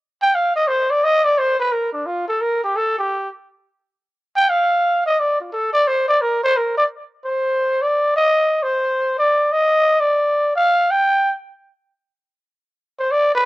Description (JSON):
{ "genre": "jazz", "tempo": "174 BPM", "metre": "4/4", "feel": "swing 65% on 8ths", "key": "unclear", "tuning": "A4 = 441 Hz", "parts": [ { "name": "growling trumpet", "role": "solo", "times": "0.2-13.5 s", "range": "D4 to G5", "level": "-16 LUFS", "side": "equal", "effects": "none" } ], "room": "little or no reverb", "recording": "recorded outdoors, with no room sound", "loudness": "-16 LUFS", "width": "side -18 dB against mid", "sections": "0.0-1.7 A section; 1.7-13.5 A section", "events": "trumpet solo 0.0-13.5", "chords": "none", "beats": "| 0.33 0.68 1.02 1.36 | 1.71 2.05 2.40 2.74 | 3.09 3.43 3.78 4.12 | 4.46 4.81 5.15 5.50 | 5.84 6.19 6.53 6.88 | 7.22 7.57 7.91 8.26 | 8.60 8.95 9.29 9.63 | 9.98 10.33 10.67 11.02 | 11.36 11.71 12.05 12.40 | 12.75 13.09 13.44" }